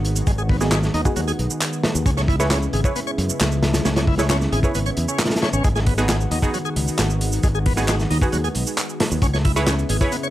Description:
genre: breakbeat, breaks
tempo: 134 BPM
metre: 4/4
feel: straight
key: G# minor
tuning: A4 = 440 Hz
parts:
  - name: lush unison pad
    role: sustained chords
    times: 0.0-10.3 s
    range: C#3 to F#4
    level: -27 LUFS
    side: equal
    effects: chorus, sidechain pumping
  - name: modern bright fingered electric bass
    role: bass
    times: 0.0-10.0 s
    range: G#1 to F#2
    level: -22 LUFS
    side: equal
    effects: tube saturation
  - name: crunchy breakbeat drum kit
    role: drums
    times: 0.0-10.2 s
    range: hi-hat, kick drum, snare drum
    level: -22 LUFS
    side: equal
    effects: none
  - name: garage drum kit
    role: drums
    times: 0.2-10.3 s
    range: handclaps, hi-hat, shaker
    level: -27 LUFS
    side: right 1 dB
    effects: none
  - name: bright tonewheel organ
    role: riff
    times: 0.3-10.3 s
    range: F#3 to C#5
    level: -28 LUFS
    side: equal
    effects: overdrive, slow rotary speaker, vintage 12-bit sampler grit, dub echo
  - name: filtered dub chord stab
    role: stabs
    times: 0.6-10.1 s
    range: B3 to C#5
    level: -26 LUFS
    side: right 2 dB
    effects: chorus, dub echo
room: light reverb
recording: none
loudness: -18 LUFS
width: side -14 dB against mid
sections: 0.0-10.3 A section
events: none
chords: 0.0 G#m7; 2.1 C#m7; 5.6 G#m7; 9.2 C#m7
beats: | 0.27 0.72 1.17 1.61 | 2.06 2.51 2.96 3.40 | 3.85 4.30 4.75 5.20 | 5.64 6.09 6.54 6.99 | 7.43 7.88 8.33 8.78 | 9.22 9.67 10.12

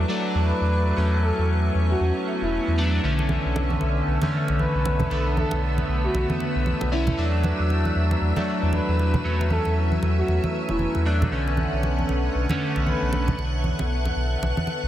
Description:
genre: deep house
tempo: 116 BPM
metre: 4/4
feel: swing 60% on 16ths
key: B minor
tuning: A4 = 442 Hz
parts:
  - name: warm analog pad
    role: sustained chords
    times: 0.0-14.9 s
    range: D3 to D6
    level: -34 LUFS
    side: left 1 dB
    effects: chorus
  - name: chorused polysynth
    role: stabs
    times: 0.0-13.4 s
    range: D3 to D4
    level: -26 LUFS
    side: equal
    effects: phaser, tape echo
  - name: sub bass with octave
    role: bass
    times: 0.0-14.9 s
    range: E1 to E2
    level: -23 LUFS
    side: equal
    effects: none
  - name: granular cloud pad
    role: texture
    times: 0.0-14.9 s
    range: B4 to A5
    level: -34 LUFS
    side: left 1 dB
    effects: built-in reverb
  - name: breathy flute-like synth lead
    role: melody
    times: 0.5-13.4 s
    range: E4 to B4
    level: -30 LUFS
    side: equal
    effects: chorus, dub echo
  - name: swell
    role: sound effects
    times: 2.3-3.0 s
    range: none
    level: -38 LUFS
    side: right 4 dB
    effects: none
  - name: soft string machine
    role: texture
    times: 3.0-14.9 s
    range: E5 to F#6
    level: -35 LUFS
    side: equal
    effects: ensemble chorus
  - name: congas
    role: percussion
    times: 3.2-14.8 s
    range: none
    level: -28 LUFS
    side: right 1 dB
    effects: none
room: light reverb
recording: dense, heavily limited modern master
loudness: -21 LUFS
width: side -12 dB against mid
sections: 0.0-14.9 A section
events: swell 2.3-3.0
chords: 0.0 E9sus4; 3.0 Bm9; 7.2 E9sus4; 11.3 Bm9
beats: 0.45 | 0.97 1.49 2.00 2.52 | 3.04 3.56 4.07 4.59 | 5.11 5.62 6.14 6.66 | 7.18 7.69 8.21 8.73 | 9.24 9.76 10.28 10.80 | 11.31 11.83 12.35 12.87 | 13.38 13.90 14.42

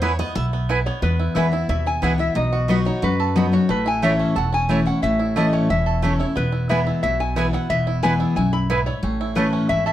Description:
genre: bluegrass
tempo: 180 BPM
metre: 4/4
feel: straight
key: E major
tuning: A4 = 440 Hz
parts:
  - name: bluegrass banjo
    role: melody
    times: 0.0-9.9 s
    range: A3 to A4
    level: -29 LUFS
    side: right 6 dB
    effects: none
  - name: picked steel-string acoustic guitar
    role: accompaniment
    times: 0.0-9.9 s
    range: E2 to E5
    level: -22 LUFS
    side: left 2 dB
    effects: none
  - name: mandolin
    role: stabs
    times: 0.0-9.5 s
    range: A3 to B5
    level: -24 LUFS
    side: right 4 dB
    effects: none
  - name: upright bass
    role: bass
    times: 0.0-9.9 s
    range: E1 to F#2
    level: -24 LUFS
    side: right 1 dB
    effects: none
  - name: lap resonator guitar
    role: melody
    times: 0.9-9.9 s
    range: B4 to B5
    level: -24 LUFS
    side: left 2 dB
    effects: none
room: moderate studio reverb, RT60 0.6 s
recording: dark, warm production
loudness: -18 LUFS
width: side -12 dB against mid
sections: 0.0-1.0 A section; 1.0-9.9 B section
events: steel-string acoustic guitar solo 0.0-1.0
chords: 0.0 E; 2.4 B; 3.7 A; 6.4 E; 9.0 A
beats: 0.02 0.36 0.69 | 1.02 1.36 1.69 2.02 | 2.36 2.69 3.03 3.36 | 3.69 4.03 4.36 4.70 | 5.03 5.36 5.70 6.03 | 6.36 6.70 7.03 7.37 | 7.70 8.03 8.37 8.70 | 9.03 9.36 9.70

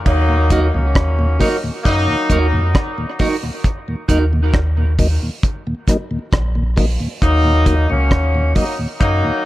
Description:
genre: dub reggae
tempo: 67 BPM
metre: 4/4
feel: straight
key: Eb minor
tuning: A4 = 439 Hz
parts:
  - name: mellow horn section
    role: second line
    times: 0.0-9.5 s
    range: Gb3 to Eb4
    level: -19 LUFS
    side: left 2 dB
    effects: high-pass filter, dub echo
  - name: warm sub bass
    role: bass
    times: 0.1-9.2 s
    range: Bb1 to Gb2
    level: -16 LUFS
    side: equal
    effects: none
  - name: deep reggae drum kit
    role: drums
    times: 0.1-9.2 s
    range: crash cymbal, hi-hat, kick drum, rim click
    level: -18 LUFS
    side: equal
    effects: none
  - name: mellow tonewheel organ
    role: accompaniment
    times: 0.3-9.3 s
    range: Eb2 to Eb4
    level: -23 LUFS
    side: left 1 dB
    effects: slow rotary speaker, high-pass filter
  - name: semi-hollow electric guitar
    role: accompaniment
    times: 0.5-4.2 s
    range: Eb4 to Bb4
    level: -24 LUFS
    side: right 4 dB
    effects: lush chorus, high-pass filter, dub echo
room: light reverb, small room ambience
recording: none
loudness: -14 LUFS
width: side -16 dB against mid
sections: 0.1-9.5 A section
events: none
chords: 0.1 Ebm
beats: | 0.06 0.96 1.85 2.75 | 3.64 4.53 5.43 6.32 | 7.21 8.11 9.00

